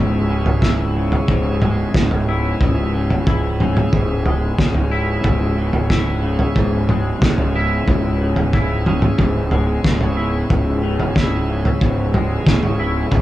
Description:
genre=psychedelic rock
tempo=91 BPM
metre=4/4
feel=straight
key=C# minor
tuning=A4 = 440 Hz
part: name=bright tonewheel organ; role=sustained chords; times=0.0-13.2 s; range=E3 to G#4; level=-30 LUFS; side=right 3 dB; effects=overdrive, slow rotary speaker
part: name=twangy electric guitar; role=riff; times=0.0-13.2 s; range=C#2 to E4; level=-22 LUFS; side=left 2 dB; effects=rotary speaker
part: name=fuzz fingered electric bass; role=bass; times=0.0-13.2 s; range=C#1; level=-20 LUFS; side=equal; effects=overdrive
part: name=cloth-damped thuddy drum kit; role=drums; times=0.5-13.2 s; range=kick drum, snare drum, toms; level=-18 LUFS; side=equal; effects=none
room=light reverb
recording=band playing live in one room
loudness=-15 LUFS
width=side -15 dB against mid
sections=0.0-13.2 A section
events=none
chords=0.0 C#m

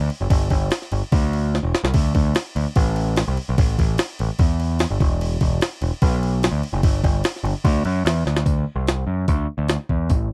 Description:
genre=indie rock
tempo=147 BPM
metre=4/4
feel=straight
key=D mixolydian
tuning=A4 = 440 Hz
part: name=growling picked electric bass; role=bass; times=0.0-10.3 s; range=E1 to F#2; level=-23 LUFS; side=equal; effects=overdrive
part: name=jungle sampler-style drum kit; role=drums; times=0.1-10.2 s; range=crash cymbal, hi-hat, kick drum, snare drum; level=-23 LUFS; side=equal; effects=none
room=little or no reverb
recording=dry, close 1970s-style studio recording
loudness=-21 LUFS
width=mono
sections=0.0-8.5 A section; 8.5-10.3 B section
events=drum fill 1.5-1.9, 8.3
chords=none

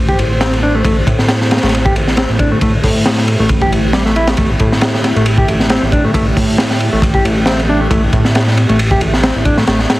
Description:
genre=breakbeat, breaks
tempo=136 BPM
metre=4/4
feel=swing 54% on 16ths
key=A minor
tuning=A4 = 440 Hz
part: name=dark analog pad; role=sustained chords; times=0.0-10.0 s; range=A3 to E5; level=-21 LUFS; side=right 1 dB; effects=chorus, sidechain pumping
part: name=fat analog bass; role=bass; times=0.0-10.0 s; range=A1 to A2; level=-16 LUFS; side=equal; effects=none
part: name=mellow electric guitar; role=riff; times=0.1-9.8 s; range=G3 to G4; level=-17 LUFS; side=equal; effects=ping-pong delay
part: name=crunchy breakbeat drum kit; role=drums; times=0.1-10.0 s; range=hi-hat, kick drum, ride cymbal, snare drum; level=-14 LUFS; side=equal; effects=none
room=light reverb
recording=heavily compressed radio sound, multiband compression, vinyl crackle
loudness=-10 LUFS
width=side -18 dB against mid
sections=0.0-10.0 A section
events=none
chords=0.0 Am7

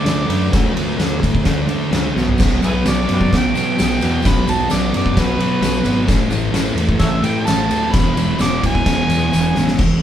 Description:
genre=garage rock duo or trio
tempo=130 BPM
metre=4/4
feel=straight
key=E mixolydian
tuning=A4 = 440 Hz
part: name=overdriven harmonica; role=melody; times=0.0-9.8 s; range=E4 to D6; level=-22 LUFS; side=right 1 dB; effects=none
part: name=thick fuzz guitar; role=riff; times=0.0-9.8 s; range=E2 to D4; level=-18 LUFS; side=equal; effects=distortion
part: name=fuzz fingered electric bass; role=bass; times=0.0-10.0 s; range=E1 to D3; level=-23 LUFS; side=equal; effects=overdrive
part: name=oversized low-tuned drum kit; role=drums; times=0.1-9.9 s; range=crash cymbal, kick drum, ride cymbal, snare drum, toms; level=-18 LUFS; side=equal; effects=none
part: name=tambourine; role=percussion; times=2.4-9.9 s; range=none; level=-35 LUFS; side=left 5 dB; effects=none
room=moderate studio reverb, RT60 1.0 s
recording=band playing live in one room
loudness=-14 LUFS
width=side -10 dB against mid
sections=0.0-9.8 A section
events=drum fill 2.1, 9.3-9.8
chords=0.0 D5; 2.1 B5; 6.1 A5; 7.9 E

